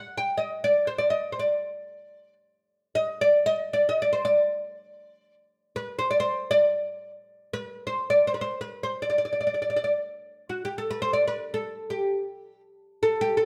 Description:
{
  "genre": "Turkish makam ensemble",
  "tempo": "free time",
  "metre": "none",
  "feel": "none",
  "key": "D makam hicaz",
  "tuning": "A4 = 443 Hz",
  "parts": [
    { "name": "oud", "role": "solo", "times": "0.0-13.5 s", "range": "F#4 to G5", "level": "-26 LUFS", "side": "equal", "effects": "none" }
  ],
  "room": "wet stone room reverb, RT60 1.0 s",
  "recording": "band playing live in one room",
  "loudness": "-26 LUFS",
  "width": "mono",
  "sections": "0.0-13.5 A section",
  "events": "none",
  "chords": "none"
}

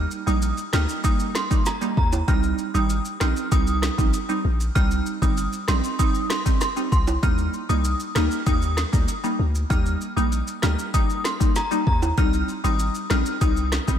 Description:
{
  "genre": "dancehall",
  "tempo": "97 BPM",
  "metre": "4/4",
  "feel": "straight",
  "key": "Eb major",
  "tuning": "A4 = 440 Hz",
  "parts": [
    { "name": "wavetable chord stab", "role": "accompaniment", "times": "0.0-14.0 s", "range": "G3 to Eb4", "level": "-26 LUFS", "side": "right 2 dB", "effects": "lush chorus" },
    { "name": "warm 808-style bass", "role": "bass", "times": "0.0-14.0 s", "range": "G1 to Eb2", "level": "-23 LUFS", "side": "equal", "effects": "none" },
    { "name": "maracas and timbales", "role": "percussion", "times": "0.1-14.0 s", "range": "none", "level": "-35 LUFS", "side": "right 4 dB", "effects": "none" },
    { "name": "synth chime", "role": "melody", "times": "0.3-13.8 s", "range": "Bb5 to F6", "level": "-29 LUFS", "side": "equal", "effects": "ensemble chorus, tremolo, tape echo" },
    { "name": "afro-pop drum kit", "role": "drums", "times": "0.4-14.0 s", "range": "hi-hat, kick drum, rim click, snare drum", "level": "-23 LUFS", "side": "equal", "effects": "none" }
  ],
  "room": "light reverb",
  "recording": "none",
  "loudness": "-20 LUFS",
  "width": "side -9 dB against mid",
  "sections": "0.0-14.0 A section",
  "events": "none",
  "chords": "0.0 Eb; 2.3 Cm; 7.2 Eb; 12.2 Cm"
}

